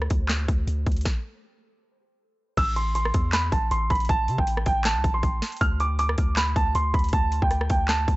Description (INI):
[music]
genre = hip hop, trap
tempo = 158 BPM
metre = 4/4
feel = half-time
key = A minor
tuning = A4 = 440 Hz
[part]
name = long sustained 808-style bass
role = bass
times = 0.0-8.2 s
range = A1 to C3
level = -26 LUFS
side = equal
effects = none
[part]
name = trap drum kit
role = drums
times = 0.0-8.2 s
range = crash cymbal, handclaps, hi-hat, kick drum, rim click, snare drum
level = -25 LUFS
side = equal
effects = overdrive
[part]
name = dark grand piano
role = melody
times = 2.6-8.2 s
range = G5 to F6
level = -26 LUFS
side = right 2 dB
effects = low-pass filter, analog delay
[sound]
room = little or no reverb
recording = dry, gritty hardware recording, nothing above 7.9 kHz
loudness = -21 LUFS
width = side -19 dB against mid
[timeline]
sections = 0.0-2.6 A section; 2.6-8.2 B section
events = break 0.0-2.6; stop 1.1-2.6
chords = 0.0 N.C.; 2.6 Am; 5.6 D5